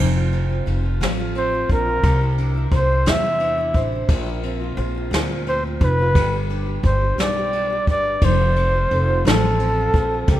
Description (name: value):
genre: six-eight pop ballad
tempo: 58 BPM (dotted quarters)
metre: 6/8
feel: straight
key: F major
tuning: A4 = 440 Hz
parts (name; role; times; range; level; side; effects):
- fingerpicked steel-string acoustic guitar; accompaniment; 0.0-10.4 s; Bb2 to C5; -27 LUFS; equal; double-tracked left and right
- upright bass; bass; 0.0-10.4 s; F1 to E2; -21 LUFS; equal; none
- jazz brush drum kit; drums; 0.3-10.4 s; kick drum, ride cymbal, snare drum; -23 LUFS; equal; none
- breathy flugelhorn; melody; 1.4-10.4 s; G4 to E5; -21 LUFS; equal; tape echo
room: light reverb, studio reverb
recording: rough home demo mix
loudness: -17 LUFS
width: side -13 dB against mid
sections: 0.0-10.4 A section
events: none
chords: 0.0 F; 2.0 Cadd9; 4.1 Bbadd9; 6.2 G; 8.2 F